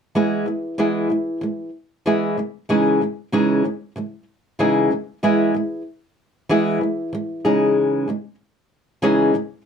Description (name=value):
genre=pop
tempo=95 BPM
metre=4/4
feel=swing 60% on 16ths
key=E major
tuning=A4 = 441 Hz
part: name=flamenco guitar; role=accompaniment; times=0.2-9.6 s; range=C#3 to G#4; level=-18 LUFS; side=equal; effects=none
room=light reverb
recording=dark, warm production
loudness=-18 LUFS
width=side -7 dB against mid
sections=0.2-5.2 A section; 5.2-9.7 B section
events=none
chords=0.2 E; 2.4 C#madd9; 5.2 E; 7.4 C#madd9